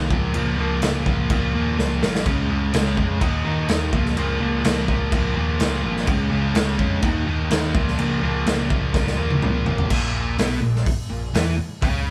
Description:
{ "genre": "hard rock", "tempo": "126 BPM", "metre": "4/4", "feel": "straight", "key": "Bb minor", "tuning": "A4 = 440 Hz", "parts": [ { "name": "overdriven electric guitar", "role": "riff", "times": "0.0-12.1 s", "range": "Bb2 to Eb4", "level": "-26 LUFS", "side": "equal", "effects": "none" }, { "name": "overdriven picked electric bass", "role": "bass", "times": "0.0-12.1 s", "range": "Ab1 to F2", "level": "-27 LUFS", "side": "equal", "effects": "none" }, { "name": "raw garage drum kit", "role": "drums", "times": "0.1-11.9 s", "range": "crash cymbal, hi-hat, kick drum, snare drum, toms", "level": "-25 LUFS", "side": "equal", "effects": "none" } ], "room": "moderate studio reverb, RT60 0.9 s", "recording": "band playing live in one room", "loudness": "-21 LUFS", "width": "mono", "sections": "0.0-9.9 A section; 9.9-12.1 B section", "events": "drum fill 1.8-2.3, 8.9-9.9", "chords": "0.1 Bbm/Db; 2.3 Db; 3.2 Eb5; 3.9 Bbm/Db; 6.1 Db; 7.0 Eb5; 7.8 Bbm/Db; 9.9 Bbm", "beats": "| 0.35 0.83 1.30 1.78 | 2.26 2.73 3.21 3.69 | 4.17 4.64 5.12 5.60 | 6.08 6.56 7.04 7.51 | 7.99 8.47 8.95 9.43 | 9.91 10.39 10.87 11.34 | 11.82" }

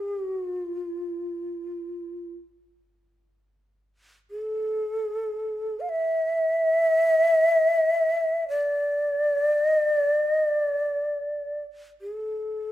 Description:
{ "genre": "japanese traditional, Japanese chamber music", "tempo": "free time", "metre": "none", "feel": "none", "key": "unclear", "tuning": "A4 = 436 Hz", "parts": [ { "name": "mellow hollow shakuhachi", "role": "solo", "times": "0.0-12.7 s", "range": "A4 to F5", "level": "-23 LUFS", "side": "equal", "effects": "none" } ], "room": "moderate recital hall reverb, RT60 1.4 s", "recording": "faint mains hum", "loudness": "-22 LUFS", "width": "side -13 dB against mid", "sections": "0.0-12.7 A section", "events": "none", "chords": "none", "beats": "free time" }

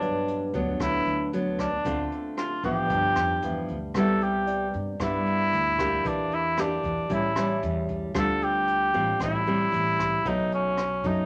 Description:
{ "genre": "bossa nova", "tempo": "114 BPM", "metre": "4/4", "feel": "straight", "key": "G major, C major from 4.0 s", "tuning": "A4 = 440 Hz", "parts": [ { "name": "mellow cor anglais", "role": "melody", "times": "0.0-11.3 s", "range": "Db4 to A4", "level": "-28 LUFS", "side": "equal", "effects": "none" }, { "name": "bell-like tine electric piano", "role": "accompaniment", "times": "0.0-6.1 s", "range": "B4 to D5", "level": "-39 LUFS", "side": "equal", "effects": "none" }, { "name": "nylon-string guitar", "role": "accompaniment", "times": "0.0-11.3 s", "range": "G2 to G4", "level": "-31 LUFS", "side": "equal", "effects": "none" }, { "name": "jazz brush drum kit", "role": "drums", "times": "0.0-11.2 s", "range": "hi-hat, kick drum, rim click", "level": "-39 LUFS", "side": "equal", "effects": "none" }, { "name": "upright bass", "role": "bass", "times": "0.5-11.3 s", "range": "G1 to G2", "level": "-34 LUFS", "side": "equal", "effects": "none" } ], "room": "moderate studio reverb, RT60 0.9 s", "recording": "none", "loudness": "-26 LUFS", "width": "mono", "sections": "0.0-4.0 A section; 4.0-11.3 B section", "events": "none", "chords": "0.0 Gmaj7; 1.9 Dm7; 2.9 G6; 4.0 Cmaj7; 6.1 Em7b5; 7.1 A7; 8.2 Dm11; 10.3 B7", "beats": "0.27 0.80 1.32 | 1.85 2.38 2.90 3.43 | 3.95 4.48 5.00 5.53 | 6.05 6.58 7.10 7.63 | 8.15 8.68 9.21 9.73 | 10.26 10.78" }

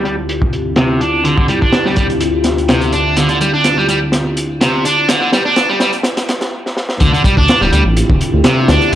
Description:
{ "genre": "breakbeat, breaks", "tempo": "125 BPM", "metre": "4/4", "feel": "swing 53% on 16ths", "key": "D minor", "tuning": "A4 = 440 Hz", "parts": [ { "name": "phased analog pad", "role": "sustained chords", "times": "0.0-9.0 s", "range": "D2 to G4", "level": "-19 LUFS", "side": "left 1 dB", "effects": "phaser, chorus, sidechain pumping" }, { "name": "distorted electric guitar", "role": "riff", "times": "0.0-9.0 s", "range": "C3 to D4", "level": "-14 LUFS", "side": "right 1 dB", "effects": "distortion, tube saturation, vintage 12-bit sampler grit, low-pass filter, tape echo" }, { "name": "crunchy breakbeat drum kit", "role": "drums", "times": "0.1-9.0 s", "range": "hi-hat, kick drum, snare drum", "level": "-16 LUFS", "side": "equal", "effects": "low-pass filter on kick, low-pass filter on hats, low-pass filter on snare, low-pass filter on room" }, { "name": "dark detuned saw bass", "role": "bass", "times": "7.0-9.0 s", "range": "D1 to D2", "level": "-14 LUFS", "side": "equal", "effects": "none" } ], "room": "light reverb", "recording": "dry, gritty hardware recording, cassette tape, high-pass filter", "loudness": "-11 LUFS", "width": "side -12 dB against mid", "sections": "0.0-7.0 A section; 7.0-9.0 B section", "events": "build-up 0.0-7.0; filter sweep on drum 0.0-7.0; filter sweep on distorted electric guitar 0.0-7.0; filter sweep on analog synth pad 0.0-7.0; filter sweep 0.0-7.0; drum fill 3.2-6.5, 6.6-7.0; stop 6.5-7.0; drop 7.0-9.0", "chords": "0.0 Dm11", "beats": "0.29 0.77 | 1.25 1.73 2.21 2.69 | 3.17 3.65 4.13 4.61 | 5.09 5.57 6.05 6.53 | 7.01 7.49 7.97 8.45 | 8.93" }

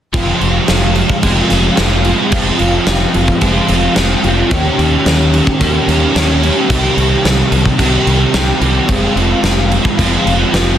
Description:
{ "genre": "rock, shoegaze and dream pop", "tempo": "110 BPM", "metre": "4/4", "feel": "straight", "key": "F minor", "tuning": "A4 = 440 Hz", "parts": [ { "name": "crunchy overdriven guitar", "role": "riff", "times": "0.1-10.8 s", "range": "C3 to G4", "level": "-14 LUFS", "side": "equal", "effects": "ensemble chorus" }, { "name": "modern bright fingered electric bass", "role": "bass", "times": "0.1-10.8 s", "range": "F1 to Eb2", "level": "-16 LUFS", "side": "equal", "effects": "none" }, { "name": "big rock drum kit", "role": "drums", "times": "0.1-10.7 s", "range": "crash cymbal, kick drum, snare drum", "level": "-15 LUFS", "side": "equal", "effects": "soft clipping on kick" } ], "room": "light reverb, studio ambience", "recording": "dense, heavily limited modern master", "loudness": "-10 LUFS", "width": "side -10 dB against mid", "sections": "0.1-10.8 A section", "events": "none", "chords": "0.1 Fm; 4.5 Eb7; 6.7 Cm; 8.9 Fm", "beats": "| 0.15 0.69 1.24 1.78 | 2.33 2.88 3.42 3.97 | 4.51 5.06 5.61 6.16 | 6.70 7.25 7.80 8.35 | 8.89 9.44 9.99 10.54" }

